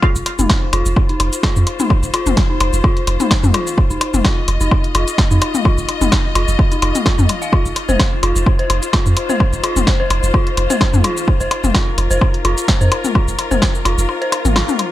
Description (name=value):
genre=minimal techno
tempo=128 BPM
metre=4/4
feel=swing 55% on 16ths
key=unclear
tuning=A4 = 441 Hz
part: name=dark detuned synth bell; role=riff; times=0.0-14.6 s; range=Eb4 to F5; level=-23 LUFS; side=equal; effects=chorus, sidechain pumping, ping-pong delay
part: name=electronic kick drum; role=drums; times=0.0-13.7 s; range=none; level=-16 LUFS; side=right 1 dB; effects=none
part: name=electronic percussion blips and toms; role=percussion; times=0.0-14.9 s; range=none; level=-21 LUFS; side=left 5 dB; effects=digital delay
part: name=bright symphonic string section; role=texture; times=0.0-14.9 s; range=F4 to Eb5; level=-25 LUFS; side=left 4 dB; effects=sidechain pumping
part: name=swarming drone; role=texture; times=0.2-14.9 s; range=Eb4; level=-34 LUFS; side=right 1 dB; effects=none
part: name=punchy sub bass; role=bass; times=0.2-14.6 s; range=F1 to F2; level=-17 LUFS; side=right 1 dB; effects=tube saturation, sidechain pumping
part: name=punchy analog drum machine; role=drums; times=0.2-14.9 s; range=cabasa, hi-hat, snare drum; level=-22 LUFS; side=equal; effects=none
part: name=swell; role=sound effects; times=14.3-14.9 s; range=none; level=-29 LUFS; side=right 1 dB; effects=none
room=digital ambience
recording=high-pass filter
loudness=-13 LUFS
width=side -14 dB against mid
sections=0.0-14.9 A section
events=drop 0.0-14.9; kick drops out 14.1-14.9; swell 14.3-14.9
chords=0.0 F5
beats=| 0.03 0.49 0.96 1.43 | 1.90 2.37 2.84 3.31 | 3.78 4.25 4.71 5.18 | 5.65 6.12 6.59 7.06 | 7.53 8.00 8.46 8.93 | 9.40 9.87 10.34 10.81 | 11.28 11.74 12.21 12.68 | 13.15 13.62 14.09 14.56